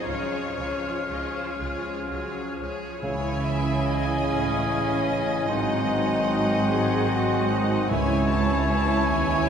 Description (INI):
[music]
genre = classical, slow romantic movement for symphony orchestra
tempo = 39-51 BPM (dotted quarters)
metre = 6/8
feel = rubato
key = Db major, C# minor from 3.0 s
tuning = A4 = 441 Hz
[part]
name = bright studio violin section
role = melody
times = 0.0-9.5 s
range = C5 to A5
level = -35 LUFS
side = left 3 dB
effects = none
[part]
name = clear chamber violin section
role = second line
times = 0.0-9.5 s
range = Ab4 to E5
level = -33 LUFS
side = left 1 dB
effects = none
[part]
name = rich chamber viola section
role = accompaniment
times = 0.0-9.5 s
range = F3 to G#4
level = -33 LUFS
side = right 1 dB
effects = none
[part]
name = rich studio cello section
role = bass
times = 0.0-9.5 s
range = C#2 to F4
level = -30 LUFS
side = right 2 dB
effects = none
[part]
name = bright clarinet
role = second line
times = 0.1-9.5 s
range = Db4 to F#4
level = -33 LUFS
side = equal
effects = none
[part]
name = mellow silver concert flute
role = second line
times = 0.1-9.5 s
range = G#5 to F6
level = -34 LUFS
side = left 2 dB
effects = none
[part]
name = mellow French horn section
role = sustained chords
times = 0.1-9.5 s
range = E3 to Db4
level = -30 LUFS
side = left 2 dB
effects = none
[part]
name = clear chamber double bass section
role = bass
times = 0.1-9.5 s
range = G#1 to D#2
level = -31 LUFS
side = right 2 dB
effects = none
[part]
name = mellow cor anglais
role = second line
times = 3.0-9.5 s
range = G#4 to C#5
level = -32 LUFS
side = right 2 dB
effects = none
[part]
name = clear bassoon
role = accompaniment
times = 3.0-9.5 s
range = C#3 to E3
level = -30 LUFS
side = equal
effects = none
[part]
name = timpani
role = percussion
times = 3.0-9.1 s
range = C#3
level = -35 LUFS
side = right 2 dB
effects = none
[sound]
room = wet cathedral reverb, RT60 5.2 s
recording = recorded in a church or concert hall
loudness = -22 LUFS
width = side -7 dB against mid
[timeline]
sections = 0.0-3.0 A section; 3.0-9.5 B section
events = none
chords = 0.1 Db; 3.0 C#m; 5.5 G#7; 7.9 C#m